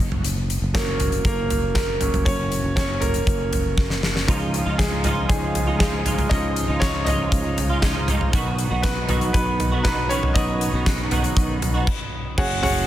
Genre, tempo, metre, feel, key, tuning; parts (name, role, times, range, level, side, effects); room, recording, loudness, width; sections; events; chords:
piano-driven pop; 119 BPM; 4/4; straight; A4 = 439 Hz
sustaining fretless electric bass; bass; 0.0-12.8 s; F#1 to C#2; -25 LUFS; equal
huge arena drum kit; drums; 0.1-12.8 s; crash cymbal, hi-hat, kick drum, snare drum, toms; -22 LUFS; equal
clear grand piano; accompaniment; 0.7-12.9 s; E#3 to F#5; -25 LUFS; right 1 dB
direct-recorded clean electric guitar; riff; 4.3-11.9 s; B2 to F#4; -27 LUFS; right 3 dB; ensemble chorus
mellow French horn section; second line; 12.4-12.9 s; C#3 to C#4; -32 LUFS; right 5 dB
light reverb; dense, heavily limited modern master; -19 LUFS; side -13 dB against mid
0.0-12.4 A section
grand piano solo 0.0-12.4; drum fill 3.8-4.3; stop 11.9-12.4
0.0 F#; 4.3 C#add9; 8.3 B